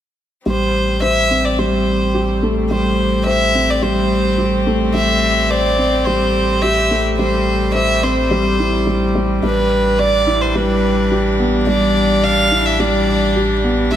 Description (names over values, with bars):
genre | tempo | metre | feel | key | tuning
electronica | 107 BPM | 4/4 | straight | A minor | A4 = 438 Hz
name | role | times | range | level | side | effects
warm violin | melody | 0.5-14.0 s | B4 to F5 | -18 LUFS | equal | none
rich string quartet | sustained chords | 0.5-14.0 s | E3 to D4 | -23 LUFS | equal | none
felt-muted upright piano | riff | 0.5-14.0 s | G3 to D5 | -18 LUFS | equal | low-pass filter
warm sub bass | bass | 0.5-14.0 s | A1 | -22 LUFS | equal | none
room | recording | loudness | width
moderate concert hall reverb, RT60 2.3 s | none | -13 LUFS | side -10 dB against mid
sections
0.5-14.0 A section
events
none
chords
0.5 Am7; 9.4 Em7/A